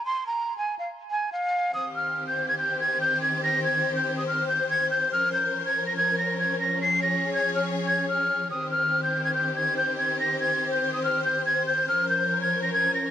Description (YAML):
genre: hip hop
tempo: 142 BPM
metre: 4/4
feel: half-time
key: C phrygian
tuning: A4 = 440 Hz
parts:
  - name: breathy jazz flute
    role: melody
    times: 0.0-13.1 s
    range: F5 to C7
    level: -24 LUFS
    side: equal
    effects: low-pass filter
  - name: warm symphonic string section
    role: sustained chords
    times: 1.7-13.1 s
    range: Eb3 to Db5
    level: -29 LUFS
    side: left 2 dB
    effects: none
room: light reverb, small room ambience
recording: vinyl crackle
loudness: -23 LUFS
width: side -10 dB against mid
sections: 0.0-1.7 A section; 1.7-13.1 B section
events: none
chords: 0.0 N.C.; 1.7 Cm; 5.1 Bbmadd9; 6.8 Db; 8.5 Cm; 11.9 Bbmadd9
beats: | 0.05 0.47 0.90 1.32 | 1.74 2.16 2.59 3.01 | 3.43 3.85 4.28 4.70 | 5.12 5.54 5.97 6.39 | 6.81 7.23 7.66 8.08 | 8.50 8.92 9.35 9.77 | 10.19 10.62 11.04 11.46 | 11.88 12.30 12.73